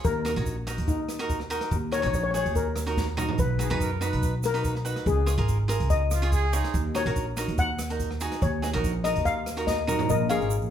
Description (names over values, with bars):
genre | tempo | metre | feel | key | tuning
calypso | 143 BPM | 4/4 | straight | Eb minor | A4 = 439 Hz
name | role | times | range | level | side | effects
steel pan | melody | 0.0-10.7 s | Eb4 to Gb5 | -29 LUFS | left 6 dB | none
cavaquinho | accompaniment | 0.0-10.6 s | Eb4 to Db5 | -32 LUFS | right 2 dB | none
upright bass | bass | 0.0-10.7 s | Ab1 to F#2 | -28 LUFS | equal | none
open jazz drum kit | drums | 0.0-10.1 s | hi-hat, kick drum, rim click, snare drum, toms | -31 LUFS | right 1 dB | none
egg shaker | percussion | 0.0-10.7 s | none | -41 LUFS | right 8 dB | none
breathy trumpet | second line | 3.6-6.9 s | Eb4 to B4 | -32 LUFS | right 5 dB | none
room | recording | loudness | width
moderate large studio reverb, RT60 0.9 s | band playing live in one room | -24 LUFS | side -9 dB against mid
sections
0.0-10.1 A section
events
steel pan solo 0.0-10.1; drum fill 3.0-3.4, 9.7-10.1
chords
0.0 Ebm; 3.4 B; 5.1 Db; 6.7 Ebm7; 10.1 Bbm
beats
| 0.05 0.47 0.88 1.30 | 1.72 2.14 2.56 2.98 | 3.39 3.81 4.23 4.65 | 5.07 5.49 5.90 6.32 | 6.74 7.16 7.58 8.00 | 8.42 8.84 9.25 9.67 | 10.09 10.51